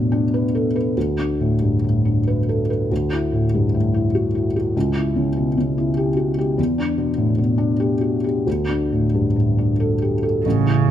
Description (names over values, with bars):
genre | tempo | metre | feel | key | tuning
neoclassical piano and strings | 89-100 BPM | 3/4 | rubato | D major | A4 = 442 Hz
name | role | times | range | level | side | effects
felt-muted upright piano | accompaniment | 0.0-10.9 s | A1 to B4 | -17 LUFS | left 1 dB | none
rich cello | second line | 10.5-10.9 s | C#3 | -18 LUFS | right 11 dB | none
room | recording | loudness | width
moderate large studio reverb, RT60 1.3 s | none | -17 LUFS | side -10 dB against mid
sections
0.0-10.4 A section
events
none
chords
0.0 E5; 1.0 Bm7/D; 2.9 Dadd9; 4.8 C#m7b5; 6.6 Em7; 8.5 Dsus4